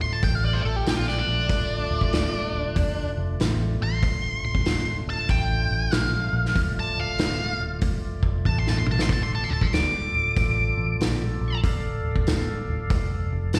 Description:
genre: blues rock power trio and southern rock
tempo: 95 BPM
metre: 4/4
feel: swing 64% on 8ths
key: D minor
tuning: A4 = 442 Hz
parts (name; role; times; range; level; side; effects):
- octave-fuzz lead guitar; melody; 0.0-13.6 s; D4 to D6; -29 LUFS; equal; wah, distortion, slapback echo
- tonewheel organ; sustained chords; 0.0-13.6 s; A3 to F5; -38 LUFS; equal; slow rotary speaker
- vintage muted fingered electric bass; bass; 0.0-13.6 s; D1 to Bb1; -29 LUFS; equal; none
- vintage drum kit; drums; 0.2-13.6 s; hi-hat, kick drum, snare drum, toms; -28 LUFS; equal; none
room: little or no reverb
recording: live gig heard through the venue's PA, recital hall reverb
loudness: -24 LUFS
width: mono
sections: 0.0-13.6 A section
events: lead electric guitar solo 0.0-13.6; drum fill 8.5-9.1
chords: 0.0 Dm

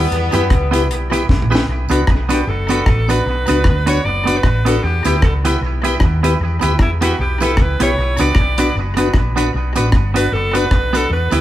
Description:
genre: ska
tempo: 153 BPM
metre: 4/4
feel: swing 57% on 8ths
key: B minor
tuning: A4 = 444 Hz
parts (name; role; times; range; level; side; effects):
- clear horn section; melody; 0.0-1.3 s; G3 to B3; -22 LUFS; left 2 dB; none
- semi-hollow electric guitar; accompaniment; 0.0-11.4 s; B3 to B4; -20 LUFS; right 3 dB; dub echo
- tonewheel organ; stabs; 0.0-11.4 s; D4 to B4; -22 LUFS; left 4 dB; chorus vibrato, slow rotary speaker
- hollow-body short-scale fingered electric bass; bass; 0.0-11.4 s; F#1 to F#2; -18 LUFS; equal; none
- deep reggae drum kit; drums; 0.1-11.4 s; hi-hat, kick drum, rim click, snare drum, toms; -18 LUFS; equal; dub echo
- tambourine; percussion; 0.3-11.4 s; none; -37 LUFS; right 4 dB; dub echo
- edgy alto saxophone; melody; 2.3-11.4 s; E4 to D5; -21 LUFS; equal; none
room: moderate large studio reverb, RT60 1.4 s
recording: band playing live in one room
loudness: -13 LUFS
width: side -13 dB against mid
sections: 0.0-1.7 A section; 1.7-11.4 B section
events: drum fill 1.3-1.7; alto saxophone solo 1.7-11.4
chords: 0.0 Em; 1.7 Bm; 4.8 Em; 8.0 Bm

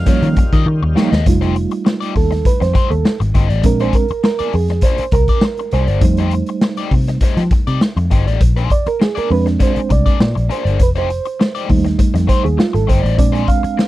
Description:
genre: funk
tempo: 101 BPM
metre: 4/4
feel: straight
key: F mixolydian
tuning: A4 = 440 Hz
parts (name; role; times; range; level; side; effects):
- bright harmonica; melody; 0.0-0.6 s; F5; -29 LUFS; left 1 dB; none
- bright tonewheel organ; sustained chords; 0.0-1.2 s; Db3 to F4; -28 LUFS; equal; slow rotary speaker, overdrive, chorus vibrato
- vintage muted picked electric bass; bass; 0.0-13.7 s; F1 to F3; -16 LUFS; left 1 dB; none
- crunchy overdriven guitar; accompaniment; 0.1-13.8 s; A3 to Eb5; -24 LUFS; left 9 dB; wah
- mellow reed electric piano; stabs; 0.1-13.9 s; F3 to F5; -19 LUFS; right 6 dB; fast tremolo
- raw garage drum kit; drums; 0.1-13.9 s; hi-hat, kick drum, snare drum; -15 LUFS; left 1 dB; none
room: little or no reverb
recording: dry, close 1970s-style studio recording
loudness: -13 LUFS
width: side -16 dB against mid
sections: 0.0-1.3 A section; 1.3-13.9 B section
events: drum fill 0.7-1.3; reed electric piano solo 1.3-13.9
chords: 0.0 Eb9; 1.3 F9; 3.6 Bb9; 6.0 F9; 8.4 Bb9; 10.8 F9; 13.2 Bb9

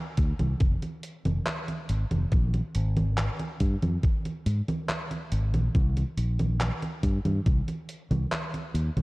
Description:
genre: vaporwave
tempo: 70 BPM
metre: 4/4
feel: straight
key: C minor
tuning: A4 = 440 Hz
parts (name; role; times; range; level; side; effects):
- fingered electric bass; bass; 0.2-9.0 s; F1 to Ab2; -26 LUFS; equal; none
- detuned 8-bit digital drum machine; drums; 0.2-9.0 s; congas, handclaps, hi-hat; -31 LUFS; right 1 dB; none
- electronic kick drum; drums; 0.2-7.6 s; none; -24 LUFS; equal; none
room: little or no reverb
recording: dark, warm production, cassette tape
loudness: -25 LUFS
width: side -22 dB against mid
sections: 0.0-9.0 A section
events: none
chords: none

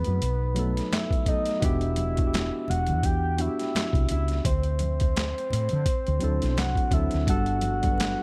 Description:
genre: R&B, neo-soul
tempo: 85 BPM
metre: 4/4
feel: swing 57% on 16ths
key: unclear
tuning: A4 = 439 Hz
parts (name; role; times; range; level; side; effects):
- soft octave-layered synth lead; melody; 0.0-8.2 s; B4 to G5; -33 LUFS; equal; chorus, tape echo
- tine electric piano; accompaniment; 0.0-8.2 s; F#3 to B4; -33 LUFS; equal; none
- woody fretless electric bass; bass; 0.0-8.1 s; E1 to D3; -29 LUFS; equal; analog chorus
- boom bap sampler-style drum kit; drums; 0.0-8.2 s; handclaps, hi-hat, kick drum, snare drum; -30 LUFS; equal; none
- congas; percussion; 0.1-8.2 s; none; -42 LUFS; equal; none
room: light reverb, digital ambience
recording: none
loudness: -26 LUFS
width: mono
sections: 0.0-8.2 A section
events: none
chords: 0.2 B7; 1.6 Em7; 4.4 D7; 7.3 Gmaj9

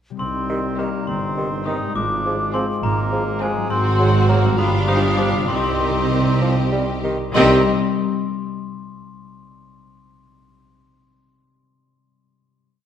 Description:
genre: cinematic, playful, whimsical film cue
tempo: 64-69 BPM (dotted quarters)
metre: 6/8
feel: straight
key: C minor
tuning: A4 = 439 Hz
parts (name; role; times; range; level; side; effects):
- concert harp; arpeggios; 0.1-7.7 s; G2 to Gb4; -27 LUFS; left 9 dB; none
- glockenspiel with soft plastic mallets; melody; 0.2-7.7 s; Ab5 to Eb6; -28 LUFS; left 3 dB; none
- mellow hollow silver concert flute; second line; 0.2-7.7 s; Eb5 to Eb6; -29 LUFS; left 1 dB; none
- warm cor anglais; second line; 0.2-7.6 s; Ab3 to Eb4; -29 LUFS; right 3 dB; none
- warm French horn section; sustained chords; 0.2-7.6 s; G3 to Gb4; -27 LUFS; left 3 dB; none
- mellow tuba; bass; 0.2-7.6 s; G1 to C2; -26 LUFS; right 3 dB; none
- warm studio cello section; bass; 0.2-7.7 s; G2 to C3; -25 LUFS; right 2 dB; none
- warm studio double bass section; bass; 0.2-7.7 s; G1 to C2; -25 LUFS; right 3 dB; none
- dark clarinet; second line; 0.5-7.6 s; G4 to Ab4; -27 LUFS; equal; none
- clear bassoon; accompaniment; 0.5-7.6 s; Eb3 to G3; -28 LUFS; right 2 dB; none
- rich studio violin section; melody; 0.8-7.7 s; Eb5 to Gb5; -30 LUFS; left 2 dB; none
- rich studio violin section; second line; 0.8-7.7 s; Gb4 to Ab4; -29 LUFS; left 1 dB; none
- clear studio viola section; accompaniment; 0.8-7.7 s; C4 to D4; -29 LUFS; right 1 dB; none
room: wet scoring stage reverb, RT60 1.7 s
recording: faint mains hum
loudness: -17 LUFS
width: side -9 dB against mid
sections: 0.2-7.3 A section; 7.3-9.2 final chord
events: none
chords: 0.2 Cm; 2.0 Fm/Ab; 3.7 Ab7; 4.6 G5; 5.5 Cm

